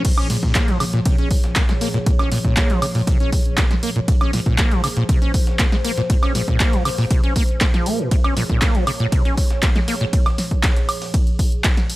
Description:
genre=acid house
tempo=119 BPM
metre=4/4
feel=straight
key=Bb minor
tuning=A4 = 439 Hz
part: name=dark analog pad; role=sustained chords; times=0.0-12.0 s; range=Bb2 to Db5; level=-28 LUFS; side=equal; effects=chorus, sidechain pumping
part: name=acid bass, saw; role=riff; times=0.0-10.0 s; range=Bb2 to Db4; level=-22 LUFS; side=equal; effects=overdrive, wide subtle chorus, sidechain pumping, tape echo
part: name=breakbeat sampler-style drum kit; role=drums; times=0.0-12.0 s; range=hi-hat, snare drum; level=-34 LUFS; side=equal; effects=none
part: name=electronic kick drum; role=drums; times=0.0-11.7 s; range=none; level=-17 LUFS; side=equal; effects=overdrive, small room reverb
part: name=punchy analog drum machine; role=drums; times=0.0-12.0 s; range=crash cymbal, handclaps, hi-hat, ride cymbal, snare drum, woodblock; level=-24 LUFS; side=right 1 dB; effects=overdrive, small room reverb
room=little or no reverb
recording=dry, gritty hardware recording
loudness=-16 LUFS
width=side -18 dB against mid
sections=0.0-12.0 A section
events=none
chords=0.0 Bbm7

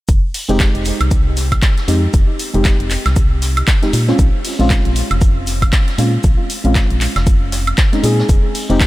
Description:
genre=deep house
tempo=117 BPM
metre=4/4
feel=swing 58% on 16ths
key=F minor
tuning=A4 = 440 Hz
part: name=organ-like FM bass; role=bass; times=0.1-8.9 s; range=F1 to Bb2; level=-17 LUFS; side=equal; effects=sidechain pumping
part: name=deep house drum kit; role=drums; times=0.1-8.9 s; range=handclaps, hi-hat, woodblock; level=-21 LUFS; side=right 1 dB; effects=none
part: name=electronic kick drum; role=drums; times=0.1-8.9 s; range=none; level=-14 LUFS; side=equal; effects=none
part: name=jazz brush drum kit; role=drums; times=0.1-8.9 s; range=hi-hat, shaker, snare drum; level=-31 LUFS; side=equal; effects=none
part: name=deep mellow chord stab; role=stabs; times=0.5-8.9 s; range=Ab3 to Ab4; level=-20 LUFS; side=equal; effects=chorus, sidechain pumping, tape echo
room=light reverb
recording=none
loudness=-12 LUFS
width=side -17 dB against mid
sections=0.1-8.9 A section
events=none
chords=0.1 Fm9; 3.9 Bbm9; 8.3 Fm9

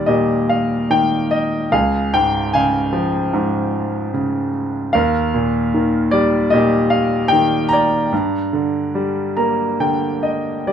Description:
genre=classical, lyrical solo piano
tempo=66-76 BPM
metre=4/4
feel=rubato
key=Eb major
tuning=A4 = 440 Hz
part: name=bright concert grand piano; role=solo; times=0.0-10.7 s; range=Db2 to Bb5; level=-15 LUFS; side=equal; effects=none
room=light reverb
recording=none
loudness=-15 LUFS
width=side -8 dB against mid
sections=0.0-10.7 A section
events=grand piano fill 8.9-10.7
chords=0.0 Ebadd9; 1.7 Db; 4.9 Ebadd9; 8.1 Gm

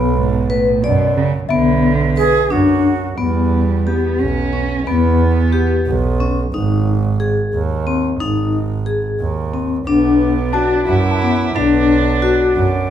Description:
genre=contemporary instrumental, chamber music in an uneven meter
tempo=179 BPM (eighths)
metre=5/8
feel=straight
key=unclear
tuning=A4 = 441 Hz
part: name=vibraphone with medium mallets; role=arpeggios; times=0.0-12.6 s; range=B3 to D5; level=-18 LUFS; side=left 5 dB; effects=none
part: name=clear double bass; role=bass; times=0.0-12.9 s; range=Ab1 to F#2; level=-17 LUFS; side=right 2 dB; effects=none
part: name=small celesta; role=texture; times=0.0-3.5, 10.5-12.9 s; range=B4 to A5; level=-25 LUFS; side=left 5 dB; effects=none
part: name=dark cello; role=melody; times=0.2-6.2, 9.9-12.9 s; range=Ab2 to E4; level=-20 LUFS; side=right 4 dB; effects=none
part: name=bright reedy shakuhachi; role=second line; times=2.2-3.2 s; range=F#4 to Ab4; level=-18 LUFS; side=right 7 dB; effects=none
part: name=clear woodwind section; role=sustained chords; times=9.9-12.9 s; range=B4 to D6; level=-26 LUFS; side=equal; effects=none
room=moderate recital hall reverb, RT60 1.5 s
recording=minimal, uncompressed stereo recording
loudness=-14 LUFS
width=side -10 dB against mid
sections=0.0-3.2 A section; 3.2-12.9 B section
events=none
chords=0.0 Bm; 3.2 Em; 6.5 Ab5; 9.9 Bm

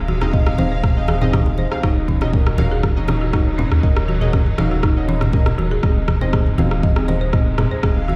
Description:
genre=afro house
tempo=120 BPM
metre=4/4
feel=straight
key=Eb dorian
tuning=A4 = 439 Hz
part: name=rich studio string section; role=sustained chords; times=0.0-8.2 s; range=C3 to F5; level=-31 LUFS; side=equal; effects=sidechain pumping
part: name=warm sub bass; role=bass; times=0.0-8.2 s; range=Eb1 to Eb2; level=-24 LUFS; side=equal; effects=sidechain pumping
part: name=folk marimba with medium hard mallets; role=arpeggios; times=0.1-8.2 s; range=Db4 to Eb5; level=-29 LUFS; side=equal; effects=sidechain pumping, delay
part: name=congas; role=percussion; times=0.1-8.2 s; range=none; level=-25 LUFS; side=equal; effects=none
part: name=deep mellow chord stab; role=stabs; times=0.2-8.0 s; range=C4 to F5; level=-29 LUFS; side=equal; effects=chorus, sidechain pumping, delay
part: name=deep house drum kit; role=drums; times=0.2-7.9 s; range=rim click, toms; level=-28 LUFS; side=equal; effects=small room ambience
part: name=electronic kick drum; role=drums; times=0.3-7.9 s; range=none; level=-20 LUFS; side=equal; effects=small room ambience
room=light reverb, studio reverb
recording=played on a big sound system in a bare room, large studio reverb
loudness=-18 LUFS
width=mono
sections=0.0-8.2 A section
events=none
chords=0.0 Ab/Eb; 1.8 Ebm7; 5.8 Ab/Eb

